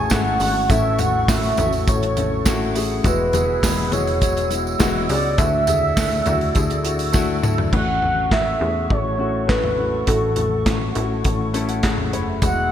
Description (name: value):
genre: piano-driven pop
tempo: 102 BPM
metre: 4/4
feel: straight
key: unclear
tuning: A4 = 439 Hz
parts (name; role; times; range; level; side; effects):
- mellow horn-like synth lead; melody; 0.0-12.7 s; A4 to G#5; -22 LUFS; right 1 dB; chorus
- dark upright piano; accompaniment; 0.0-12.7 s; A2 to B5; -24 LUFS; left 5 dB; none
- large flute ensemble; sustained chords; 0.0-12.7 s; G#4 to E6; -29 LUFS; right 2 dB; none
- plucky analog bass; bass; 0.0-12.7 s; E1 to E2; -25 LUFS; equal; none
- modern studio drum kit; drums; 0.1-12.6 s; crash cymbal, handclaps, hi-hat, kick drum, snare drum, toms; -22 LUFS; equal; gated reverb
- tambourine; percussion; 0.1-7.6, 12.4-12.6 s; none; -33 LUFS; right 8 dB; none
room: moderate lush hall reverb, RT60 2.8 s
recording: bright 1980s-style digital production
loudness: -17 LUFS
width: side -10 dB against mid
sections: 0.0-7.7 A section; 7.7-12.7 B section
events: drum fill 7.1-7.7; upright piano fill 11.2-12.4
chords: 0.0 A6; 3.0 Eadd9; 5.4 Dadd9; 7.7 A6